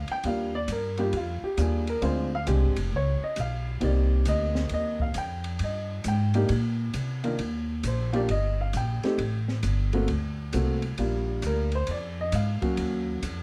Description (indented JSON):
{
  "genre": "jazz piano trio",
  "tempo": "134 BPM",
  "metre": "4/4",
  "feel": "swing 66% on 8ths",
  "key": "unclear",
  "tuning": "A4 = 438 Hz",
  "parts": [
    { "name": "warm upright piano", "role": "melody", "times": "0.0-13.2 s", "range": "Eb3 to G5", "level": "-31 LUFS", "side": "equal", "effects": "none" },
    { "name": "upright bass", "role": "bass", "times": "0.0-13.4 s", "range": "F1 to C3", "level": "-30 LUFS", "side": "equal", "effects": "none" },
    { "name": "open jazz drum kit", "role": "drums", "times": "0.1-13.4 s", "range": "hi-hat, kick drum, ride cymbal, snare drum", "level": "-40 LUFS", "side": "equal", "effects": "none" }
  ],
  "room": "light reverb",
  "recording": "dark, warm production",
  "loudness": "-27 LUFS",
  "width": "mono",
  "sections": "0.0-7.4 A section; 7.4-13.4 B section",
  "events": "upright piano solo 0.0-7.4",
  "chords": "0.2 Ebmaj9; 2.0 Dm7b5; 2.9 Db7; 3.8 Cm7; 7.4 Eb; 9.2 Gsus2; 10.1 D7b13; 11.0 Gm7; 12.8 Ebm9"
}